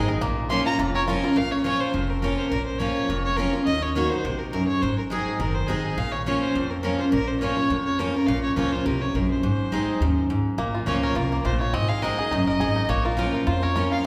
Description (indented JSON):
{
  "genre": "bluegrass",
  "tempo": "208 BPM",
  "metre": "4/4",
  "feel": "swing 55% on 8ths",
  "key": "Bb minor",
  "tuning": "A4 = 440 Hz",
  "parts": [
    { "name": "bluegrass banjo", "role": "melody", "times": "0.0-1.4, 10.6-14.1 s", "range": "Bb3 to Bb4", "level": "-32 LUFS", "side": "equal", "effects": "none" },
    { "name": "picked steel-string acoustic guitar", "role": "accompaniment", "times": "0.0-14.0 s", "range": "F2 to Ab4", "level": "-26 LUFS", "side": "equal", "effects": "none" },
    { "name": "upright bass", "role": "bass", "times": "0.0-13.9 s", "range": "F1 to F2", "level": "-32 LUFS", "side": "equal", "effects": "none" },
    { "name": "rich fiddle", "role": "melody", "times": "0.5-14.0 s", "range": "Ab4 to C6", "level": "-31 LUFS", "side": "equal", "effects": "none" }
  ],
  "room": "wet recital hall reverb, RT60 1.7 s",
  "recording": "recorded in a church or concert hall",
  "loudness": "-24 LUFS",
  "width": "mono",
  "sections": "0.0-1.4 A section; 1.4-14.1 B section",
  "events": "fiddle solo 0.0-1.4",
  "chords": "0.2 Bbm; 3.7 Ebm; 4.8 Ab; 6.0 Bbm; 9.4 Ab; 10.6 Bbm; 11.7 Ab; 12.9 Bbm",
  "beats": "| 0.21 0.50 0.79 1.08 | 1.36 1.65 1.94 2.23 | 2.52 2.81 3.09 3.38 | 3.67 3.96 4.25 4.54 | 4.82 5.11 5.40 5.69 | 5.98 6.26 6.55 6.84 | 7.13 7.42 7.71 7.99 | 8.28 8.57 8.86 9.15 | 9.44 9.72 10.01 10.30 | 10.59 10.88 11.16 11.45 | 11.74 12.03 12.32 12.60 | 12.89 13.18 13.47 13.76 | 14.04"
}